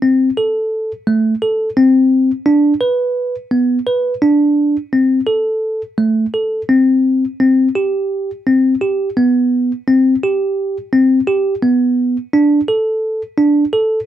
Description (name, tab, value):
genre	contemporary instrumental, contemporary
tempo	171 BPM (eighths)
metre	7/8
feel	straight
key	unclear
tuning	A4 = 440 Hz
part	bell-like tine electric piano	solo	0.0-14.0 s	A3 to B4	-12 LUFS	equal	none
room	light reverb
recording	close, detailed microphones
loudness	-12 LUFS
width	side -11 dB against mid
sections	0.0-7.4 A section; 7.4-14.1 B section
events	none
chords	none